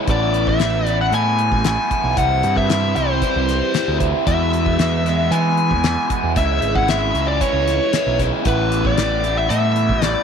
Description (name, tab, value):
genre	psychedelic rock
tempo	114 BPM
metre	4/4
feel	straight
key	unclear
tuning	A4 = 441 Hz
part	raw garage guitar	riff	0.0-10.2 s	E2 to E4	-21 LUFS	right 1 dB	overdrive, phaser
part	fuzz lead guitar	melody	0.1-10.2 s	B4 to G#5	-21 LUFS	left 3 dB	distortion, slapback echo
part	growling picked electric bass	bass	0.1-10.1 s	G#1 to E3	-21 LUFS	right 2 dB	overdrive
part	damped 70s drum kit	drums	0.1-10.1 s	hi-hat, kick drum, snare drum	-23 LUFS	left 2 dB	none
room	light reverb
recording	1960s-style stereo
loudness	-16 LUFS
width	side -7 dB against mid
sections	0.0-10.2 A section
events	none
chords	0.1 Asus2; 2.2 C; 4.3 E; 6.4 C#m; 8.5 Asus2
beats	| 0.08 0.60 1.12 1.65 | 2.17 2.69 3.22 3.74 | 4.26 4.79 5.31 5.84 | 6.36 6.89 7.41 7.93 | 8.46 8.98 9.51 10.03